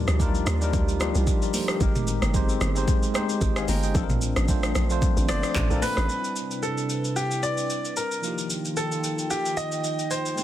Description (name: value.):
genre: amapiano.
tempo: 112 BPM.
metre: 4/4.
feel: swing 55% on 16ths.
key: unclear.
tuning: A4 = 440 Hz.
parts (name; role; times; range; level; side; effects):
bell-like tine electric piano; accompaniment; 0.0-10.4 s; F3 to Bb5; -30 LUFS; left 1 dB; medium stereo tremolo.
hollow soft pad; sustained chords; 0.0-10.4 s; C3 to G5; -32 LUFS; right 1 dB; chorus.
hollow log drum bass; bass; 0.0-6.1 s; G1 to Eb2; -25 LUFS; equal; none.
afro-pop drum kit; drums; 0.1-10.4 s; handclaps, hi-hat, kick drum, rim click, shaker, toms; -27 LUFS; equal; overdrive.
congas; percussion; 0.1-6.0 s; none; -35 LUFS; right 5 dB; none.
clear baby grand piano; melody; 5.3-10.4 s; G4 to Eb5; -28 LUFS; equal; digital delay.
room: light reverb.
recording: dense, heavily limited modern master.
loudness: -22 LUFS.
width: side -12 dB against mid.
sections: 0.0-6.1 A section; 6.1-10.4 B section.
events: drop 0.0-6.1.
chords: 0.0 Ebmaj9; 1.8 Abmaj9; 3.9 Bbmaj9; 6.1 Cmaj9; 8.2 Ebadd9.